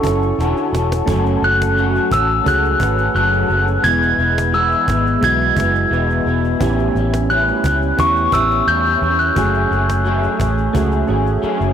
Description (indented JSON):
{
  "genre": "indie pop, bedroom pop",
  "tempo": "87 BPM",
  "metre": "4/4",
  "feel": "straight",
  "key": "F# minor",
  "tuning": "A4 = 440 Hz",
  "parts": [
    { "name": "electric guitar through a small old amp", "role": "accompaniment", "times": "0.0-11.7 s", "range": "A2 to A4", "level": "-22 LUFS", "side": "left 3 dB", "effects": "analog chorus, vibrato effect" },
    { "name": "soft electric-piano-like synth keys", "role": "accompaniment", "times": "0.0-11.7 s", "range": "G#3 to B4", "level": "-22 LUFS", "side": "right 5 dB", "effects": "chorus, cassette tape" },
    { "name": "vintage muted fingered electric bass", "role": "bass", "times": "0.0-11.7 s", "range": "E1 to E2", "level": "-20 LUFS", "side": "equal", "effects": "tube saturation" },
    { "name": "cajon", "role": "drums", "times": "0.0-11.7 s", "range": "none", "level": "-25 LUFS", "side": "equal", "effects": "none" },
    { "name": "glockenspiel with rubber mallets", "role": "melody", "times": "1.4-11.7 s", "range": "C#6 to G#6", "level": "-18 LUFS", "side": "left 1 dB", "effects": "analog chorus, digital delay" }
  ],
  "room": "light reverb",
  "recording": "blown-out, overdriven recording, overdrive",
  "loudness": "-14 LUFS",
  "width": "side -8 dB against mid",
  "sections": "0.0-11.7 A section",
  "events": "drum fill 0.4-1.1, 10.7-11.7",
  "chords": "0.0 Dmaj7; 1.1 F#m; 3.8 E; 6.6 A7; 9.4 F#madd9",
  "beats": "0.39 | 1.08 1.77 2.46 3.15 | 3.84 4.53 5.22 5.91 | 6.60 7.29 7.98 8.67 | 9.36 10.05 10.74 11.43"
}